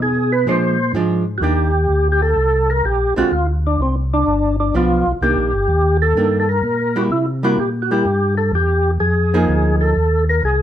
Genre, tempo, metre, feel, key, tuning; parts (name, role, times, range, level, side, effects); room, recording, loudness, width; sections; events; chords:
jazz; 126 BPM; 4/4; swing 68% on 8ths; A4 = 445 Hz
overdriven tonewheel organ; melody; 0.0-10.6 s; C4 to C5; -18 LUFS; equal; slow rotary speaker, chorus vibrato
mellow tonewheel organ; bass; 0.0-10.6 s; G1 to C3; -18 LUFS; equal; overdrive, chorus vibrato, slow rotary speaker
archtop guitar, miked and amplified; accompaniment; 0.5-9.9 s; D3 to Ab4; -19 LUFS; right 2 dB
wet club reverb, RT60 0.6 s; heard from further back in the room; -14 LUFS; side -10 dB against mid
0.0-1.4 A section; 1.4-10.6 B section
tonewheel organ solo 0.0-1.4
0.5 Bb7; 1.4 Ebmaj7; 3.3 Csus24; 4.3 G7; 5.2 Cm9; 7.1 C7; 9.0 Fm7